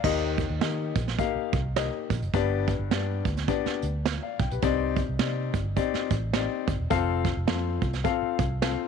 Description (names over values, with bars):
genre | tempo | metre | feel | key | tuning
uptempo 1960s-style soul | 105 BPM | 4/4 | swing 60% on 8ths | unclear | A4 = 437 Hz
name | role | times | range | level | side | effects
warm upright piano | accompaniment | 0.0-8.9 s | G2 to G5 | -28 LUFS | left 14 dB | none
vintage muted fingered electric bass | bass | 0.0-8.7 s | E1 to Eb3 | -30 LUFS | right 1 dB | none
vintage brush drum kit | drums | 0.0-8.8 s | crash cymbal, hi-hat, kick drum, snare drum | -29 LUFS | right 7 dB | none
room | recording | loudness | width
light reverb, studio ambience | 1960s-style stereo with parts hard left and right | -25 LUFS | side -6 dB against mid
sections
0.0-8.9 A section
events
none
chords
0.0 Eb; 2.3 G; 4.6 Cmadd9; 6.9 F